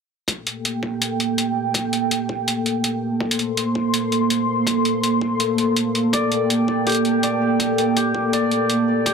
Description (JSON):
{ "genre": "half-time drum and bass", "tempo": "164 BPM", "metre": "4/4", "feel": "swing 58% on 16ths, half-time", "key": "G minor", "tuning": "A4 = 440 Hz", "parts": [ { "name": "dark analog pad", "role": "sustained chords", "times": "0.3-9.1 s", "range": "Bb3 to C6", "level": "-20 LUFS", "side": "right 1 dB", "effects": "chorus, sidechain pumping" }, { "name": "electronic hi-hat", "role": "drums", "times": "0.3-9.1 s", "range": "none", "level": "-23 LUFS", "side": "left 1 dB", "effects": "overdrive" }, { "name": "electronic kick drum", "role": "drums", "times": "0.3-9.1 s", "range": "none", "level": "-30 LUFS", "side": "left 2 dB", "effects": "overdrive, high-pass filter on kick, high-pass filter on room" }, { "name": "santur", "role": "arpeggios", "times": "6.1-9.1 s", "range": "G4 to D5", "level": "-23 LUFS", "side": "right 1 dB", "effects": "digital delay" } ], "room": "wet echo chamber reverb, RT60 1.4 s", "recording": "dense, heavily limited modern master", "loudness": "-18 LUFS", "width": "side -5 dB against mid", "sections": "0.3-9.1 A section", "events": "none", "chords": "0.3 Gmadd9", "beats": "| 0.28 0.65 1.01 1.38 | 1.75 2.11 2.48 2.84 | 3.21 3.57 3.94 4.31 | 4.67 5.04 5.40 5.77 | 6.13 6.50 6.87 7.23 | 7.60 7.96 8.33 8.70 | 9.06" }